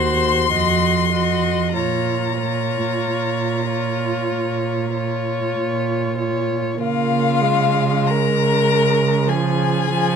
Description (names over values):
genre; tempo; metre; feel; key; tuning
classical, slow romantic movement for string quartet; 45-52 BPM; 4/4; rubato; Bb minor, Db major from 6.8 s; A4 = 440 Hz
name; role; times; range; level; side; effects
warm violin; melody; 0.0-10.2 s; F5 to C6; -23 LUFS; left 10 dB; none
warm violin; second line; 0.0-10.2 s; F4 to Eb5; -23 LUFS; left 5 dB; none
warm viola; accompaniment; 0.0-10.2 s; F3 to Gb4; -24 LUFS; right 2 dB; none
warm cello; bass; 0.0-10.2 s; Eb2 to Db3; -22 LUFS; right 7 dB; none
room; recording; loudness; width
light reverb; close, detailed microphones; -17 LUFS; side -7 dB against mid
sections
0.0-6.8 A section; 6.8-10.2 B section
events
none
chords
0.0 Cdim/Eb; 0.5 F5; 1.8 Bbm; 6.8 Db